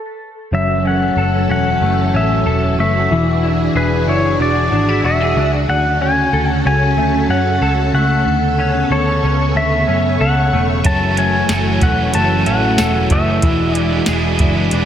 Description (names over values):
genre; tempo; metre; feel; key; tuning
dream pop; 93 BPM; 4/4; straight; F# minor; A4 = 440 Hz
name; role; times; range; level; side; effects
pedal steel guitar; melody; 0.5-14.0 s; B4 to A5; -19 LUFS; left 1 dB; digital delay, slapback echo
string machine, full ensemble; sustained chords; 0.5-14.9 s; C#3 to D5; -20 LUFS; right 1 dB; ensemble chorus
semi-hollow electric guitar; arpeggios; 0.5-14.9 s; F#2 to A4; -20 LUFS; left 2 dB; ensemble chorus, digital delay
vintage muted picked electric bass; bass; 0.5-14.9 s; E1 to F#2; -18 LUFS; equal; none
cranked stack guitar; accompaniment; 10.8-14.9 s; F#2 to F#4; -21 LUFS; right 4 dB; overdrive, harmonic tremolo, analog chorus, slapback echo
soft vintage rhythm box; drums; 10.8-14.9 s; hi-hat, kick drum, snare drum, tambourine; -18 LUFS; equal; none
room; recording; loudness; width
moderate lush hall reverb, RT60 1.8 s, digital ambience; big arena sound; -13 LUFS; side -9 dB against mid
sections
0.5-14.9 A section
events
stop 0.0-0.5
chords
0.0 N.C.; 0.5 F#m7; 3.1 E9; 5.7 Dmaj7; 8.3 Bm9; 10.8 F#m7; 13.4 E9